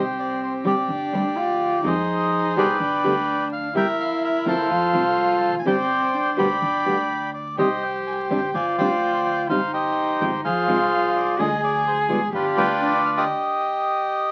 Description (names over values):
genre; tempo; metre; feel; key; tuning
tango; 126 BPM; 4/4; rubato; unclear; A4 = 440 Hz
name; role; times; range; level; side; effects
bandoneon; melody; 0.0-14.3 s; D4 to B5; -24 LUFS; equal; none
dark cello; second line; 0.0-13.2 s; C4 to Ab4; -27 LUFS; equal; none
upright bass; bass; 0.0-13.2 s; E1 to F2; -36 LUFS; equal; none
nylon-string guitar; accompaniment; 0.6-12.7 s; B2 to G4; -26 LUFS; equal; none
room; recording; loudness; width
moderate studio reverb, RT60 0.6 s; very old 78 rpm record, vinyl crackle; -22 LUFS; mono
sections
0.0-14.3 A section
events
stop 13.3-14.3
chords
0.0 C5; 1.8 Fm7; 2.8 G; 3.8 C7/G; 4.7 F; 5.7 Gsus4; 6.6 G; 7.6 Cm; 8.5 Gsus4; 9.5 Cm/G; 10.4 Fm; 11.4 Ddim; 12.3 G7; 13.3 N.C.